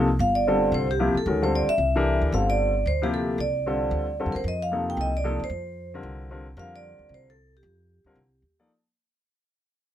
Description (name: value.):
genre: modal jazz.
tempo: 226 BPM.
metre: 4/4.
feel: swing 59% on 8ths.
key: unclear.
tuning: A4 = 444 Hz.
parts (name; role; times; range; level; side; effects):
clear grand piano; accompaniment; 0.0-8.7 s; C3 to D5; -26 LUFS; left 2 dB; none.
upright bass; bass; 0.0-8.7 s; G1 to F2; -28 LUFS; equal; none.
vibraphone with medium mallets; melody; 0.2-8.6 s; G4 to G5; -26 LUFS; right 1 dB; none.
room: light reverb.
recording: close, detailed microphones.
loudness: -22 LUFS.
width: side -11 dB against mid.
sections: 0.0-8.7 A section.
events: fade-out 0.2-8.7.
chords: 0.2 G13sus4; 4.4 F13sus4.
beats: | 0.19 0.46 0.72 0.99 | 1.26 1.52 1.79 2.06 | 2.32 2.59 2.85 3.12 | 3.38 3.65 3.92 4.18 | 4.45 4.71 4.98 5.25 | 5.51 5.78 6.04 6.31 | 6.57 6.84 7.11 7.37 | 7.64 7.90 8.17 8.43.